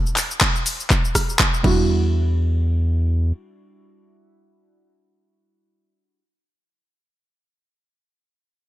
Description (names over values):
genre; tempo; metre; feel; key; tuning
deep house; 122 BPM; 4/4; swing 57% on 16ths; E minor; A4 = 440 Hz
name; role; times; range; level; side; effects
deep house drum kit; drums; 0.1-1.8 s; crash cymbal, handclaps, hi-hat, rim click, shaker; -20 LUFS; left 1 dB; studio reverb
electronic kick drum; drums; 0.4-1.8 s; none; -20 LUFS; equal; studio reverb
deep mellow chord stab; stabs; 1.6-6.2 s; G3 to F#4; -25 LUFS; right 4 dB; chorus, sidechain pumping, ping-pong delay
warm sub bass; bass; 1.6-3.3 s; E2; -18 LUFS; equal; tube saturation
room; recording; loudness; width
light reverb; bright 1980s-style digital production; -17 LUFS; side -14 dB against mid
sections
0.0-1.9 A section; 1.9-5.8 B section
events
drop 0.0-1.9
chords
0.0 N.C.; 1.6 Em9